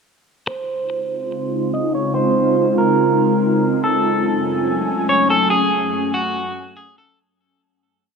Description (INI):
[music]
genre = hip hop, atmospheric cloud-rap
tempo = 143 BPM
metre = 4/4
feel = half-time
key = Db major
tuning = A4 = 440 Hz
[part]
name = electric guitar at the edge of break-up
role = melody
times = 0.5-7.2 s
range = Gb4 to Eb5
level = -20 LUFS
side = right 1 dB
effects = low-pass filter, ping-pong delay
[part]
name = ethereal airy pad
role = sustained chords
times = 1.1-7.2 s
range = Gb2 to Ab5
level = -18 LUFS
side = equal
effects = ensemble chorus, built-in reverb, low-pass filter
[sound]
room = wet huge ambient reverb, RT60 5.0 s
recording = none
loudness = -16 LUFS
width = side -5 dB against mid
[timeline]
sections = 0.5-7.2 breakdown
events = filter sweep 0.5-7.2; fade-out 5.5-7.2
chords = 0.5 Dbmaj7; 3.8 Gbmadd9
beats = | 0.48 0.90 1.32 1.74 | 2.16 2.58 3.00 3.42 | 3.83 4.25 4.67 5.09 | 5.51 5.93 6.35 6.77